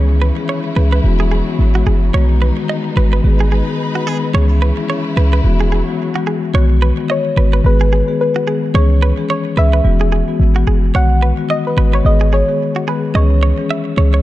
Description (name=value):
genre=afrobeats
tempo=109 BPM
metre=4/4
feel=swing 58% on 16ths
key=unclear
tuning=A4 = 440 Hz
part: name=marimba with medium mallets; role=accompaniment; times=0.0-14.2 s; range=D#3 to G#4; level=-19 LUFS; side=left 5 dB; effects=none
part: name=warm studio string section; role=sustained chords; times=0.0-6.5 s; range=C#3 to B4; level=-25 LUFS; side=left 1 dB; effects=none
part: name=direct-recorded clean electric guitar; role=riff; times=0.0-14.2 s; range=F#4 to E5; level=-23 LUFS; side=right 6 dB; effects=digital delay
part: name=clean 808-style bass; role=bass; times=0.0-14.2 s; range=E1 to C#2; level=-12 LUFS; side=equal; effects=none
part: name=soft round pluck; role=melody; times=7.1-13.9 s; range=B4 to F#5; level=-20 LUFS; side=equal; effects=chorus, digital delay
room=small room ambience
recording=dark, warm production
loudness=-12 LUFS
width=side -15 dB against mid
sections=0.0-6.5 A section; 6.5-14.2 B section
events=break 6.0-6.5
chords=0.0 C#m; 1.0 Eadd9; 2.1 B6; 3.2 G#m; 4.3 C#m; 5.4 Eadd9; 6.5 B6; 7.6 G#m; 8.7 C#m; 9.8 Eadd9; 10.9 B6; 12.0 G#m; 13.1 C#m